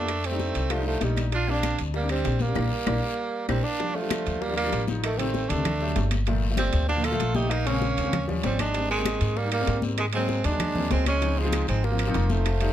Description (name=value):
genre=Afro-Cuban jazz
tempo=194 BPM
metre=4/4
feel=straight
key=Bb major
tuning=A4 = 444 Hz
part: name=breathy tenor saxophone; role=melody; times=0.0-12.7 s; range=G3 to A4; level=-29 LUFS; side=right 3 dB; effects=plate reverb
part: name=clear tenor saxophone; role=second line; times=0.0-12.7 s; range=Eb3 to F4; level=-34 LUFS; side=right 5 dB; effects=none
part: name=warm grand piano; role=accompaniment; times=0.0-12.7 s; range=Bb2 to G4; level=-31 LUFS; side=left 3 dB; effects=none
part: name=upright bass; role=bass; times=0.0-12.7 s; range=F1 to Ab2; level=-27 LUFS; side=left 1 dB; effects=none
part: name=bongos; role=percussion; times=0.1-12.7 s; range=none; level=-38 LUFS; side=left 12 dB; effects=none
part: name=claves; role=percussion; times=0.1-12.6 s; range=none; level=-40 LUFS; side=left 5 dB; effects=none
part: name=congas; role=percussion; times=0.1-12.7 s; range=none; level=-33 LUFS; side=left 3 dB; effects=none
part: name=guiro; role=percussion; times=0.1-12.7 s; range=none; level=-41 LUFS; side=left 6 dB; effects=none
part: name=timbales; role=percussion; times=0.1-12.7 s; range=none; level=-35 LUFS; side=right 11 dB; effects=none
room=light reverb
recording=none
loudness=-23 LUFS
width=side -11 dB against mid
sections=0.0-3.8 A section; 3.8-12.7 B section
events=band accent 2.6-3.8; grand piano fill 2.9-3.8; drum fill 3.2-3.8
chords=0.1 F13; 1.3 Bb69; 3.8 Ebmaj9; 5.0 Am7b5; 5.7 D7; 6.3 Gm7; 7.5 Bbm7; 8.1 Eb7; 8.7 Abmaj7; 10.0 Ab7; 11.2 Dbmaj7